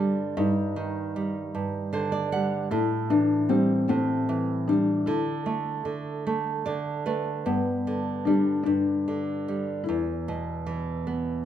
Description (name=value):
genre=children's music, lullaby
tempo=51 BPM (dotted quarters)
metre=6/8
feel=rubato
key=G major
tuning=A4 = 442 Hz
part: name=felt-muted upright piano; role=melody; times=0.0-11.4 s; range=B3 to E4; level=-26 LUFS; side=left 4 dB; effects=none
part: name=nylon-string guitar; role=accompaniment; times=0.0-11.4 s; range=E2 to F#5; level=-27 LUFS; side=right 4 dB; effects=none
room=wet recital hall reverb, RT60 1.5 s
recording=minimal, uncompressed stereo recording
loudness=-24 LUFS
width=side -10 dB against mid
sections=0.0-11.4 A section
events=nylon-string guitar fill 1.5-2.7, 6.3-7.5, 11.0-11.4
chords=0.4 Cmadd9/G (rootless); 2.7 Am7; 5.1 Dsus2; 7.5 G; 9.9 E5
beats=| 0.37 1.54 | 2.71 3.88 | 5.06 6.26 | 7.46 8.66 | 9.86 11.04